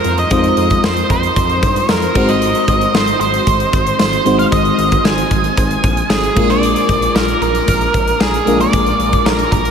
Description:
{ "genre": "1980s-style pop", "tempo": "114 BPM", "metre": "4/4", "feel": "straight", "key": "unclear", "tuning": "A4 = 439 Hz", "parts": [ { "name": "octave-fuzz lead guitar", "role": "melody", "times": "0.0-9.7 s", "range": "Ab4 to Ab5", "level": "-16 LUFS", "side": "right 2 dB", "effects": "distortion, shimmer reverb, tape echo" }, { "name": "FM electric piano", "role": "accompaniment", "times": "0.0-9.7 s", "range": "Ab3 to C5", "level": "-18 LUFS", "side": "left 2 dB", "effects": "chorus, shimmer reverb" }, { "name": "big rock drum kit", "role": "drums", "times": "0.0-9.7 s", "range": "crash cymbal, hi-hat, kick drum, snare drum, tambourine", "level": "-17 LUFS", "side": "equal", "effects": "none" }, { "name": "smooth gliding synth bass", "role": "bass", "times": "0.1-9.7 s", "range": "Ab1 to G2", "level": "-21 LUFS", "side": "equal", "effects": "none" } ], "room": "wet huge ambient reverb, RT60 8.1 s", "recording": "dreamy mix soaked in reverb", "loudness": "-11 LUFS", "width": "side -7 dB against mid", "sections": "0.0-9.7 A section", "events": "none", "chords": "0.0 Fm7; 2.2 Ab7; 6.4 Bb7" }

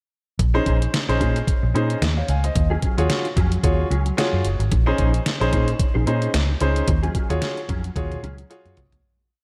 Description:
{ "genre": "early-eighties boogie funk", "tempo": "111 BPM", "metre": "4/4", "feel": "swing 56% on 16ths", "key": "Bb minor", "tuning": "A4 = 441 Hz", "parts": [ { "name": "mellow electric guitar", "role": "riff", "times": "0.4-9.0 s", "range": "Gb3 to C5", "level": "-33 LUFS", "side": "equal", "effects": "ensemble chorus" }, { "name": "vintage muted fingered electric bass", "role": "bass", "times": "0.4-9.0 s", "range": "Gb1 to Bb2", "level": "-24 LUFS", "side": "equal", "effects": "none" }, { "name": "detuned 8-bit digital drum machine", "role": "drums", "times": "0.4-9.0 s", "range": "hi-hat, kick drum, snare drum, toms", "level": "-25 LUFS", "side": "equal", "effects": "none" }, { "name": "clear grand piano", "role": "accompaniment", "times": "0.5-8.8 s", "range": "Db4 to Ab5", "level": "-27 LUFS", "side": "equal", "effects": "none" } ], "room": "light reverb, digital ambience", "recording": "none", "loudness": "-21 LUFS", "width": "mono", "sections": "0.4-9.0 verse", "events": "fade-out 6.9-9.0; drum fill 8.0-9.0", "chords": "0.4 Bbm11; 2.6 Ebm11; 4.7 Bbm11; 6.9 Ebm11" }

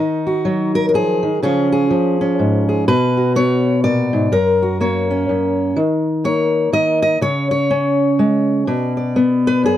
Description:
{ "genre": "folk, solo fingerstyle acoustic guitar", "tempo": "124 BPM", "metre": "3/4", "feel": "swing 60% on 8ths", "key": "unclear", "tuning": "A4 = 445 Hz", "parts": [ { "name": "fingerpicked steel-string acoustic guitar", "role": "solo", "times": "0.0-9.8 s", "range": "F#2 to D#5", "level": "-14 LUFS", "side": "equal", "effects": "none" } ], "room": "little or no reverb", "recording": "dry, close 1970s-style studio recording", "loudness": "-14 LUFS", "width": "side -12 dB against mid", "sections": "0.0-9.8 A section", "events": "none", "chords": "0.0 D#m; 1.4 C#; 2.9 Bm; 4.3 F#; 5.8 D#5; 7.2 C#5; 8.7 Bm" }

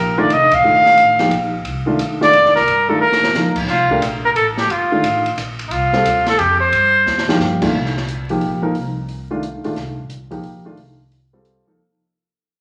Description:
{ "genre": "modal jazz", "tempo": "178 BPM", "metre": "3/4", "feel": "swing 64% on 8ths", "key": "C dorian", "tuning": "A4 = 441 Hz", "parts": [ { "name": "warm trumpet", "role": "melody", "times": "0.0-7.4 s", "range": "Eb4 to F5", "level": "-16 LUFS", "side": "equal", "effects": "none" }, { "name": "warm baby grand piano", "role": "accompaniment", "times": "0.0-11.8 s", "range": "Bb2 to Bb4", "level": "-23 LUFS", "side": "equal", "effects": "none" }, { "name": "upright bass", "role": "bass", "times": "0.0-11.8 s", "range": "F1 to G2", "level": "-30 LUFS", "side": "equal", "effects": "none" }, { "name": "open jazz drum kit", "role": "drums", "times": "0.3-11.5 s", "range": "crash cymbal, hi-hat, kick drum, ride cymbal, snare drum", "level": "-28 LUFS", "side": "equal", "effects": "none" } ], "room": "wet large studio reverb, RT60 1.2 s", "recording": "vinyl crackle", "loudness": "-16 LUFS", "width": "mono", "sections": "0.0-7.7 A section; 7.7-11.8 B section", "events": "band accent 0.5; drum fill 3.0-3.3, 7.1-7.4; fade-out 7.7-11.8", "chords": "0.0 Cm11" }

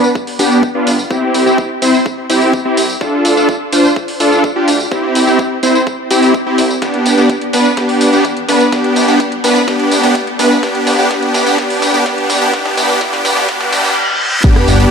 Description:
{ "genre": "EDM, festival progressive house", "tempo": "126 BPM", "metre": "4/4", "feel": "straight", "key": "C major", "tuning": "A4 = 435 Hz", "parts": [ { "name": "supersaw chords", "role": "riff", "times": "0.0-14.9 s", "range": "B3 to C5", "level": "-11 LUFS", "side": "equal", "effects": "sidechain pumping, low-pass filter, tape echo" }, { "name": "fat analog bass", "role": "bass", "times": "0.0-14.9 s", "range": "G1 to D2", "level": "-21 LUFS", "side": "equal", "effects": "sidechain pumping, high-pass filter" }, { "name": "pop drum kit", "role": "drums", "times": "0.0-14.9 s", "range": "crash cymbal, hi-hat, rim click, snare drum, tambourine", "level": "-20 LUFS", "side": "equal", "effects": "high-pass filter on hats, high-pass filter on snare, high-pass filter on perc, high-pass filter on cymbals" }, { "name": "electronic kick drum", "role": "drums", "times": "0.2-14.5 s", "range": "none", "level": "-17 LUFS", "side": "equal", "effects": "high-pass filter on kick, high-pass filter on room" }, { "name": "riser, reverse cymbal and sub drop", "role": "sound effects", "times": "8.0-14.9 s", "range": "none", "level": "-21 LUFS", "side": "equal", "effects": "none" } ], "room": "moderate lush hall reverb, RT60 1.8 s", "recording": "high-pass filter", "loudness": "-10 LUFS", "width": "side -6 dB against mid", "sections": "0.0-14.4 A section", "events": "build-up 0.0-14.4; filter sweep on supersaw synth 0.0-14.4; filter sweep 0.0-14.4; drum fill 6.8-14.0; reverse cymbal 13.5-14.4; impact 14.4-14.9", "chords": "0.0 G; 1.1 C; 3.0 Dm; 4.9 C; 6.8 G; 8.7 C5; 10.6 G/D; 12.5 C5" }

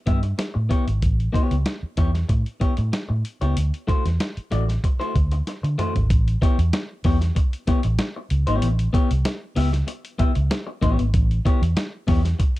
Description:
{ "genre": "funk", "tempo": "95 BPM", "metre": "4/4", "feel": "straight", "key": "A mixolydian", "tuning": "A4 = 440 Hz", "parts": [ { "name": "electric guitar at the edge of break-up", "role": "accompaniment", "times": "0.1-12.4 s", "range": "A3 to E5", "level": "-27 LUFS", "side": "left 3 dB", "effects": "plate reverb" }, { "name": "vintage muted fingered electric bass", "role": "bass", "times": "0.1-12.3 s", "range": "G#1 to D3", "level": "-21 LUFS", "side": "equal", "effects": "none" }, { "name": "dusty soul sampler-style drum kit", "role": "drums", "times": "0.1-12.6 s", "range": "hi-hat, kick drum, snare drum, toms", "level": "-22 LUFS", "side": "equal", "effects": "none" } ], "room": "little or no reverb", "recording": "dark, warm production", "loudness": "-19 LUFS", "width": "side -17 dB against mid", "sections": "0.0-6.1 A section; 6.1-12.6 B section", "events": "drum fill 5.5-6.1", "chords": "0.0 A9; 3.6 D9; 6.1 A9" }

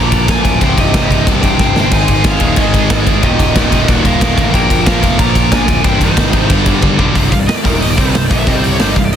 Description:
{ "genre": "heavy metal", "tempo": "183 BPM", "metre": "4/4", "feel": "straight", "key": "C minor", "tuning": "A4 = 439 Hz", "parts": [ { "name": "high-gain lead guitar", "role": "melody", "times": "0.0-9.2 s", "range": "Bb4 to Bb5", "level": "-19 LUFS", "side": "left 1 dB", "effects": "distortion" }, { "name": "high-gain lead guitar", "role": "second line", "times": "0.0-6.5 s", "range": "Eb4 to D5", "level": "-23 LUFS", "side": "right 4 dB", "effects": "distortion" }, { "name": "heavy high-gain guitar", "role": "riff", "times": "0.0-7.2 s", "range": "C2 to Bb3", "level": "-22 LUFS", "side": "equal", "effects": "none" }, { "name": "scooped high-gain guitar", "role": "riff", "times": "0.0-9.1 s", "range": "C2 to C4", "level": "-18 LUFS", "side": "right 9 dB", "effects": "distortion" }, { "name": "tight distorted guitar", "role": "riff", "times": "0.0-9.1 s", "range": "C2 to C4", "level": "-19 LUFS", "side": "left 12 dB", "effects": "distortion" }, { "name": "fuzz picked electric bass", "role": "bass", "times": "0.0-9.1 s", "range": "C1 to Ab2", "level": "-17 LUFS", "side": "equal", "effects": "overdrive" }, { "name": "big rock drum kit", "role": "drums", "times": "0.1-9.2 s", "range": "crash cymbal, hi-hat, kick drum, ride cymbal, snare drum, toms", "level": "-13 LUFS", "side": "equal", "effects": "none" } ], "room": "light reverb", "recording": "dense, heavily limited modern master", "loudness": "-9 LUFS", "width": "side -9 dB against mid", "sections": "0.0-7.2 A section; 7.2-9.2 B section", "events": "drum fill 1.6-1.9, 6.8-7.2; lead electric guitar solo 7.2-9.2", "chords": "0.0 Bb; 0.6 Cm; 1.9 Ab; 3.2 Eb; 4.5 Bb; 5.8 Cm; 6.5 G5; 7.2 C5; 7.7 Eb5; 8.0 C5" }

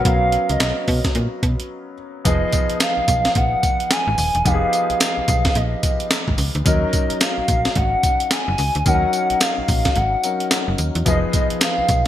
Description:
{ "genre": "R&B, new jack swing", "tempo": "109 BPM", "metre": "4/4", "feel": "swing 62% on 16ths", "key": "unclear", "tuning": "A4 = 440 Hz", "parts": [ { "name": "warm concert grand piano", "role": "accompaniment", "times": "0.0-12.1 s", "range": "F3 to Bb4", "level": "-25 LUFS", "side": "left 3 dB", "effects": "analog chorus" }, { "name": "slap-like FM bass", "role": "bass", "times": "0.0-12.1 s", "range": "Eb1 to Cb3", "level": "-22 LUFS", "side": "equal", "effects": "none" }, { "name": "hollow clarinet-like synth lead", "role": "melody", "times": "0.1-12.1 s", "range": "Eb5 to Ab5", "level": "-21 LUFS", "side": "equal", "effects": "chorus, ping-pong delay" }, { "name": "breakbeat sampler-style drum kit", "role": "drums", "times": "0.1-12.1 s", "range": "handclaps, hi-hat, kick drum, snare drum, tambourine", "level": "-20 LUFS", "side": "equal", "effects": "gated reverb" } ], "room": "moderate plate reverb, RT60 2.0 s, digital ambience", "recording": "bright 1980s-style digital production", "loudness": "-16 LUFS", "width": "side -12 dB against mid", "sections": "0.0-2.3 A section; 2.3-12.1 B section", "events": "break 1.7-2.3, 10.0-11.1", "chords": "0.0 Abm11 (rootless); 2.3 Fm7b5; 6.7 Ebm7; 11.1 Fm7b5" }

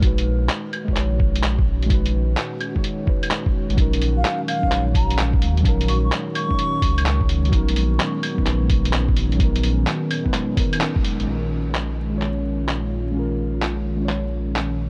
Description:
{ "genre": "future garage", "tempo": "128 BPM", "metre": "4/4", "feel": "swing 66% on 16ths", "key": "Bb phrygian", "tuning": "A4 = 444 Hz", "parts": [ { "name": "muted felt-like synth keys", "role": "accompaniment", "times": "0.0-14.9 s", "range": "Gb3 to Db5", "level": "-30 LUFS", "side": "equal", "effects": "chorus, sidechain pumping, analog delay" }, { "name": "airy breathy pad", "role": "sustained chords", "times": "0.0-14.9 s", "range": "Bb2 to Gb4", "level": "-30 LUFS", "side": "equal", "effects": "chorus, sidechain pumping" }, { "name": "warm sub bass", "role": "bass", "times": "0.0-14.9 s", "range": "Ab1 to Eb2", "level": "-24 LUFS", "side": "equal", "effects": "sidechain pumping" }, { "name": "electronic kick drum", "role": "drums", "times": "0.0-11.0 s", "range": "none", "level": "-23 LUFS", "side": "equal", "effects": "none" }, { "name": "lo-fi sampler-style drum kit", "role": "drums", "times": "0.0-14.7 s", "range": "claves, handclaps, hi-hat", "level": "-29 LUFS", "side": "equal", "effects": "none" }, { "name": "baroque flute", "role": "melody", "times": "4.2-7.0 s", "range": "F5 to Db6", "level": "-31 LUFS", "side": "equal", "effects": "analog delay" } ], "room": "little or no reverb", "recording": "vinyl crackle, nothing above 10.5 kHz", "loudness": "-21 LUFS", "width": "mono", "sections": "0.0-11.3 A section; 11.3-14.9 B section", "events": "band accent 10.8", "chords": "0.0 Abm7/Bb; 3.8 Ebm7/Bb; 7.5 Bmaj7/A#; 11.3 Bbm7" }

